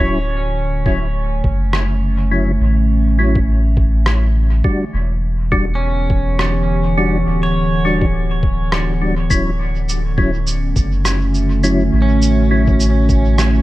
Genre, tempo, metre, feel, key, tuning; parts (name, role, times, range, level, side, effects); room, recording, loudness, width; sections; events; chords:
ambient dub; 103 BPM; 4/4; swing 58% on 16ths; A4 = 440 Hz
warbly tape-like pad; sustained chords; 0.0-13.6 s; D3 to F#5; -21 LUFS; right 1 dB; chorus, built-in reverb
pedal steel guitar; arpeggios; 0.0-13.6 s; C#4 to C#5; -26 LUFS; right 2 dB; dub echo
percussive tonewheel organ; stabs; 0.0-12.7 s; F#3 to F#4; -22 LUFS; left 1 dB; chorus vibrato, slow rotary speaker, dub echo
soft dub sub bass; bass; 0.0-13.6 s; D1 to A1; -16 LUFS; equal
electronic kick drum; drums; 0.9-13.2 s; -18 LUFS; equal
electronic rim click and cabasa; drums; 1.7-13.5 s; -22 LUFS; right 1 dB; dub echo
light reverb, digital ambience; -14 LUFS; side -17 dB against mid
0.0-13.6 A section
0.0 Dmaj9; 4.6 Em9; 9.3 Dmaj9